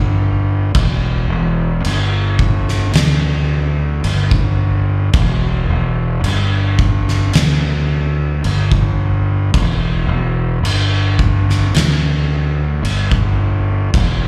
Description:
stoner and doom metal; 55 BPM; 4/4; straight; E minor; A4 = 440 Hz
fuzz fingered electric bass; bass; 0.0-14.3 s; E1 to D2; -17 LUFS; equal; overdrive
oversized low-tuned drum kit; drums; 0.7-14.2 s; crash cymbal, kick drum, snare drum; -21 LUFS; equal
little or no reverb; live gig heard through the venue's PA, club reverb; -16 LUFS; mono
0.0-14.3 A section

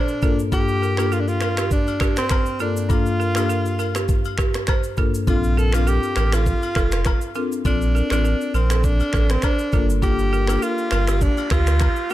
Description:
afrobeats; 101 BPM; 4/4; swing 55% on 16ths; A4 = 437 Hz
bright alto saxophone; melody; 0.0-12.1 s; C4 to A4; -24 LUFS; equal; ping-pong delay
balafon; riff; 0.0-12.1 s; G4 to C5; -30 LUFS; right 7 dB; ping-pong delay
afro-pop drum kit; drums; 0.1-12.1 s; finger snaps, kick drum, rim click, shaker; -22 LUFS; equal
marimba with medium hard mallets; accompaniment; 0.2-12.1 s; G2 to A4; -25 LUFS; left 4 dB
agogo bells and woodblock; percussion; 0.5-12.0 s; -36 LUFS; left 8 dB
warm sub bass; bass; 5.3-11.9 s; F1 to D2; -20 LUFS; equal
noise sweep; sound effects; 10.8-12.1 s; -35 LUFS; right 3 dB
small room ambience; dark, warm production; -18 LUFS; side -14 dB against mid
0.0-12.1 A section
noise sweep 10.8-12.1
0.2 Gm7; 5.3 Bbmaj7; 9.7 Gm7

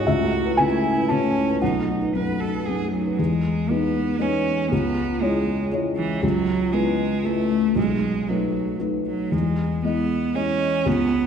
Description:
neoclassical piano and strings; 117 BPM; 3/4; rubato; E major; A4 = 439 Hz
rich cello; second line; 0.0-11.3 s; E3 to B4; -24 LUFS; right 3 dB
felt-muted upright piano; accompaniment; 0.0-11.3 s; B1 to A5; -22 LUFS; left 2 dB
wet scoring stage reverb, RT60 1.8 s; recorded in a church or concert hall; -20 LUFS; side -7 dB against mid
0.0-3.2 A section; 3.2-11.3 A section
0.1 Aadd9/C#; 1.6 B7; 3.2 Emaj7; 4.7 C#m7; 6.2 Aadd9/C#; 7.8 B7; 9.3 Emaj7

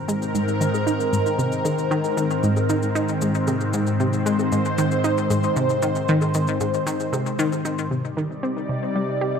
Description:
ambient, sequencer-driven space music; 115 BPM; 4/4; straight; A4 = 441 Hz
lush unison pad; sustained chords; 0.0-9.4 s; Ab2 to D5; -22 LUFS; equal; chorus, phaser
analog pluck; riff; 0.1-9.3 s; Ab2 to G4; -23 LUFS; equal; chorus, ping-pong delay
cabasa and bongos; percussion; 0.1-7.9 s; -35 LUFS; left 2 dB; ping-pong delay
moderate plate reverb, RT60 2.8 s; -20 LUFS; side -6 dB against mid
0.0-7.9 A section; 7.9-9.4 B section
filter sweep on synth arpeggio sound 0.0-7.9
0.0 Abadd9; 7.9 Cmadd9

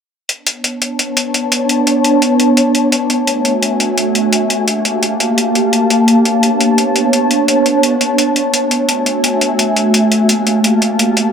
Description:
liquid drum and bass; 171 BPM; 4/4; straight; A4 = 436 Hz
ethereal airy pad; sustained chords; 0.7-11.3 s; A3 to A5; -12 LUFS; equal; ensemble chorus, built-in reverb
electronic hi-hat; drums; 0.3-11.2 s; -16 LUFS; left 1 dB
moderate lush hall reverb, RT60 1.9 s; -11 LUFS; side -6 dB against mid
0.3-11.3 A section
0.3 Bm9; 2.9 F#m9; 4.3 Gm9; 5.9 Bm9; 8.5 F#m9; 9.9 Gm9

